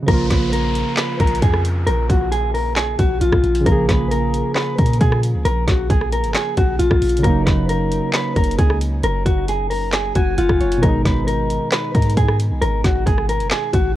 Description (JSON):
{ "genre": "hip hop, trap", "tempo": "134 BPM", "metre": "4/4", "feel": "half-time", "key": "unclear", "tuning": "A4 = 442 Hz", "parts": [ { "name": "soft electric-piano-like synth keys", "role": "accompaniment", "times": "0.0-14.0 s", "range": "B2 to G#5", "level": "-23 LUFS", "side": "right 2 dB", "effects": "chorus" }, { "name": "mellow electric guitar", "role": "melody", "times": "0.1-13.9 s", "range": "E#4 to B4", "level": "-21 LUFS", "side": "left 1 dB", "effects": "none" }, { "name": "warm 808-style bass", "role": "bass", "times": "0.1-14.0 s", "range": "F#1 to A#2", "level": "-20 LUFS", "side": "equal", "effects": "none" }, { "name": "trap drum kit", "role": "drums", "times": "0.1-13.8 s", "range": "handclaps, hi-hat, kick drum, rim click, snare drum", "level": "-19 LUFS", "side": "equal", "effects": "none" }, { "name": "downlifter", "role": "sound effects", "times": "0.1-3.7 s", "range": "none", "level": "-33 LUFS", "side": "equal", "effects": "none" } ], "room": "digital ambience", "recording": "worn, warbling old tape, cassette tape, warbly pitch drift", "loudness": "-15 LUFS", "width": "side -14 dB against mid", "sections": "0.1-14.0 A section", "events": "none", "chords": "0.1 A#m; 7.2 F#6; 10.8 G#m" }